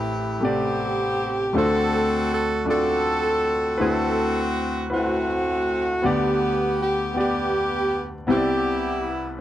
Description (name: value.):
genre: gospel.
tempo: 53 BPM (dotted quarters).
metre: 6/8.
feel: straight.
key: unclear.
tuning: A4 = 441 Hz.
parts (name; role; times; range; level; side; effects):
edgy saxophone section; melody; 0.0-9.4 s; A3 to A4; -22 LUFS; right 1 dB; none.
clear baby grand piano; accompaniment; 0.0-9.4 s; A1 to F#5; -25 LUFS; left 2 dB; none.
room: little or no reverb.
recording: dry, close 1970s-style studio recording.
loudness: -20 LUFS.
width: side -12 dB against mid.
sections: 0.0-9.4 A section.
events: none.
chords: 0.0 Am9; 1.6 D7; 3.8 D13; 6.0 Gmaj7/D; 8.3 Cmaj9.